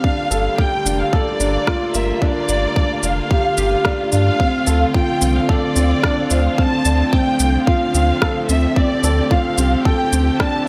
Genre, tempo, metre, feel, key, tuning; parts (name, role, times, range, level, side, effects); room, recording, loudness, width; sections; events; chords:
piano and strings electronica; 110 BPM; 4/4; straight; D minor; A4 = 440 Hz
warm studio violin section; melody; 0.0-10.7 s; D5 to A5; -24 LUFS; equal
dark studio string section; sustained chords; 0.0-10.7 s; D3 to G4; -28 LUFS; equal; sidechain pumping
felt-muted upright piano; riff; 0.0-10.7 s; C4 to D5; -22 LUFS; equal; tape echo
electronic kick drum; drums; 0.0-10.5 s; -21 LUFS; equal; studio reverb
warm sub bass; bass; 0.3-10.3 s; F1 to G2; -20 LUFS; equal; tube saturation, sidechain pumping
electronic shaker and rim click; drums; 0.3-10.5 s; -25 LUFS; equal; studio reverb
light reverb, small room ambience; -17 LUFS; mono
0.0-10.7 A section
0.0 Gm9; 4.4 Dm7